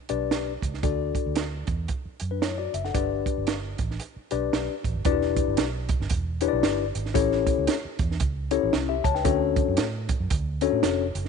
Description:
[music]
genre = uptempo 1960s-style soul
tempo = 114 BPM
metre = 4/4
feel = swing 60% on 8ths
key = unclear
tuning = A4 = 439 Hz
[part]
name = mellow tine electric piano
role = accompaniment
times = 0.1-11.0 s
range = C#4 to A5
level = -26 LUFS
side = left 13 dB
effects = none
[part]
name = vintage muted fingered electric bass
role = bass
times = 0.1-11.3 s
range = E1 to A2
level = -30 LUFS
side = right 2 dB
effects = none
[part]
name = compact cocktail drum kit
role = drums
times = 0.1-11.3 s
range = hi-hat, kick drum, snare drum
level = -27 LUFS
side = right 5 dB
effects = none
[sound]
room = light reverb, studio reverb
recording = 1960s-style stereo, nothing above 10.3 kHz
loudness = -23 LUFS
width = side -6 dB against mid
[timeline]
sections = 0.0-5.0 A section; 5.0-11.3 B section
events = none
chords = 0.0 G; 0.8 D; 2.9 G; 5.0 Em7; 7.2 A7; 9.3 Dmaj7

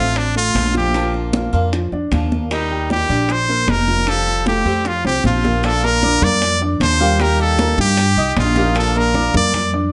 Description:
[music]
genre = latin, Cuban son and guajira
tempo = 154 BPM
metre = 4/4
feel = straight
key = Bb major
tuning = A4 = 441 Hz
[part]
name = brilliant trumpet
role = melody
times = 0.0-9.7 s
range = D4 to D5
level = -20 LUFS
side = equal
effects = none
[part]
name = picked swing-style acoustic guitar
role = accompaniment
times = 0.0-9.6 s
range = D3 to G4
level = -28 LUFS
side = equal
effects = none
[part]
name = dark grand piano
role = arpeggios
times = 0.0-9.9 s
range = F3 to F6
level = -25 LUFS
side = equal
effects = none
[part]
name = upright bass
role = bass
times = 0.0-9.9 s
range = F1 to G2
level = -22 LUFS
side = equal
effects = none
[part]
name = bongos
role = percussion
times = 0.2-9.9 s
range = none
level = -31 LUFS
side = equal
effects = none
[part]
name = congas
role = percussion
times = 0.2-9.9 s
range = none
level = -26 LUFS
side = equal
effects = none
[sound]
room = moderate large studio reverb, RT60 0.9 s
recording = nothing above 10.7 kHz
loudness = -17 LUFS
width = mono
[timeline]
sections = 0.0-5.6 A section; 5.6-9.9 B section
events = drum fill 5.1-5.6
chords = 0.0 Dm7; 0.9 Bb; 2.5 Ebmaj7; 4.1 Fadd9; 5.6 Bb; 7.2 Eb; 8.8 Bb

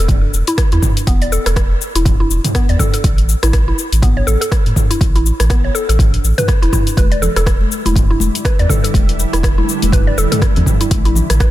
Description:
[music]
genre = afro house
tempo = 122 BPM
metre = 4/4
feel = swing 58% on 16ths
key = E dorian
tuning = A4 = 439 Hz
[part]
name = mallet-like synth pluck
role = arpeggios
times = 0.0-11.5 s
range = B3 to D5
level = -21 LUFS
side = equal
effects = chorus, cassette tape, sidechain pumping, tape echo
[part]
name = warm sub bass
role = bass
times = 0.0-11.5 s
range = E1 to A2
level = -16 LUFS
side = equal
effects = sidechain pumping
[part]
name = deep house drum kit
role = drums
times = 0.1-11.5 s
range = cabasa, hi-hat, rim click, toms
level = -20 LUFS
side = equal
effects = overdrive
[part]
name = electronic kick drum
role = drums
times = 0.1-11.5 s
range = none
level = -14 LUFS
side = equal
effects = overdrive
[part]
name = ethereal airy pad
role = sustained chords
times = 7.8-11.5 s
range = D3 to E4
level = -23 LUFS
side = right 3 dB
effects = ensemble chorus, built-in reverb, phaser, sidechain pumping
[part]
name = congas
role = percussion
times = 7.0-11.3 s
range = none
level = -23 LUFS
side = left 6 dB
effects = none
[sound]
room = digital ambience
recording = dense, heavily limited modern master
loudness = -12 LUFS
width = side -15 dB against mid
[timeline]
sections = 0.0-11.5 A section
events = none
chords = 0.0 E5; 3.0 A5; 7.0 Em7; 10.9 A7

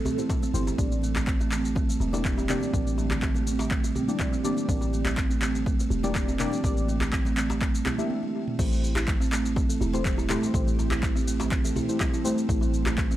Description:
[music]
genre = afro house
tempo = 123 BPM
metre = 4/4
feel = straight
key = A phrygian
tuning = A4 = 440 Hz
[part]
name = ethereal airy pad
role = sustained chords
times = 0.0-13.2 s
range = D3 to A4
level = -37 LUFS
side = equal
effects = ensemble chorus, built-in reverb, phaser, sidechain pumping
[part]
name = buzzing kalimba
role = arpeggios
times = 0.0-13.2 s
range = E3 to A4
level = -29 LUFS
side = right 4 dB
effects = sidechain pumping, analog delay
[part]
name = deep mellow chord stab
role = stabs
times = 0.0-13.2 s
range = A3 to E5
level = -33 LUFS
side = left 4 dB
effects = chorus, phaser, sidechain pumping, analog delay
[part]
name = afro-pop drum kit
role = drums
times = 0.1-13.2 s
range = crash cymbal, handclaps, shaker, toms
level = -33 LUFS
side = left 1 dB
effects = overdrive
[part]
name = congas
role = percussion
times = 0.1-8.1 s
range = none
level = -38 LUFS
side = right 2 dB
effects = none
[part]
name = djembe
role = percussion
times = 0.1-13.0 s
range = none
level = -36 LUFS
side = left 1 dB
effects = none
[part]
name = electronic kick drum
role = drums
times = 0.3-13.1 s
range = none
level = -27 LUFS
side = equal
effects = overdrive
[part]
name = warm 808-style bass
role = bass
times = 0.5-13.2 s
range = E1 to A1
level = -30 LUFS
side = equal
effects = sidechain pumping
[sound]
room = digital ambience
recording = dry, gritty hardware recording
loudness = -23 LUFS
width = side -14 dB against mid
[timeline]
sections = 0.0-8.6 A section; 8.6-13.2 B section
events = break 8.1-8.6; drum fill 8.1-8.6; drop 8.6-13.2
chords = 0.0 Am7; 0.8 Gm; 8.6 Am7

